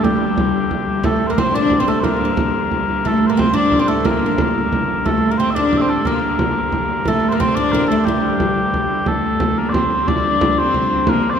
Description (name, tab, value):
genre	medieval dance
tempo	120 BPM (dotted quarters)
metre	6/8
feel	straight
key	G minor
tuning	A4 = 440 Hz
part	mellow small bagpipes	melody	0.0-11.4 s	G4 to E5	-20 LUFS	left 1 dB	none
part	oud	second line	0.0-8.7 s	G3 to D4	-22 LUFS	right 4 dB	slapback echo
part	warm viola da gamba	second line	0.0-11.4 s	G3 to E4	-21 LUFS	left 2 dB	none
part	clear hurdy-gurdy	drone	0.0-11.4 s	G2 to D3	-25 LUFS	equal	none
part	frame drum	percussion	0.0-11.2 s	none	-21 LUFS	right 2 dB	none
room	wet cathedral reverb, RT60 4.6 s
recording	heard from further back in the room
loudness	-15 LUFS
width	side -7 dB against mid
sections	0.0-1.0 A section; 1.0-9.1 B section; 9.1-11.4 B section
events	none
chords	none